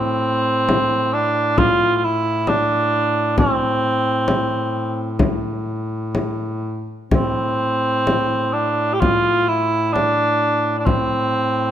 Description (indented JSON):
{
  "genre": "caucasian folk, Caucasian lament",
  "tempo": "61-68 BPM",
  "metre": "4/4",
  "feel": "rubato",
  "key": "A minor",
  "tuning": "A4 = 440 Hz",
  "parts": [
    { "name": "mellow cor anglais", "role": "melody", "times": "0.0-11.7 s", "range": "C4 to G4", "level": "-18 LUFS", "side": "right 1 dB", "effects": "none" },
    { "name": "clear duduk", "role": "drone", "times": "0.0-11.7 s", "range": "A2", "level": "-24 LUFS", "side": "left 1 dB", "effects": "none" },
    { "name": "frame drum", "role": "percussion", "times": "0.7-11.1 s", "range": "none", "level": "-21 LUFS", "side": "left 2 dB", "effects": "none" }
  ],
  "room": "moderate scoring stage reverb, RT60 1.6 s",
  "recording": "minimal, uncompressed stereo recording",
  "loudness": "-17 LUFS",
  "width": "side -10 dB against mid",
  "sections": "0.0-11.7 A section",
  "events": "none",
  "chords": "none"
}